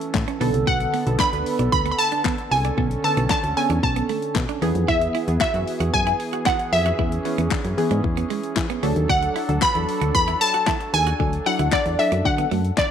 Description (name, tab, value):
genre	dance-pop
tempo	114 BPM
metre	4/4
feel	straight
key	B dorian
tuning	A4 = 440 Hz
part	warm analog pad	sustained chords	0.0-12.9 s	D3 to A4	-30 LUFS	right 2 dB	chorus, sidechain pumping
part	pop drum kit	drums	0.0-12.9 s	handclaps, hi-hat, kick drum, snare drum	-26 LUFS	left 3 dB	none
part	clean electric guitar	riff	0.1-12.8 s	G#3 to F#4	-30 LUFS	right 14 dB	lush chorus
part	solid FM bass	bass	0.1-12.7 s	B1 to E3	-23 LUFS	equal	sidechain pumping
part	funky polysynth comp	accompaniment	0.4-12.5 s	D3 to B4	-27 LUFS	right 1 dB	chorus, sidechain pumping
part	glassy wavetable pluck	melody	0.7-12.9 s	D5 to B5	-22 LUFS	equal	chorus
room	light reverb, digital ambience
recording	1960s-style stereo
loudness	-19 LUFS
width	side -8 dB against mid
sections	0.0-12.9 A section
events	none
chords	0.4 Bm7; 4.6 E; 8.8 D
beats	0.15 | 0.67 1.20 1.73 2.25 | 2.78 3.30 3.83 4.36 | 4.88 5.41 5.94 6.46 | 6.99 7.51 8.04 8.57 | 9.09 9.62 10.15 10.67 | 11.20 11.72 12.25 12.78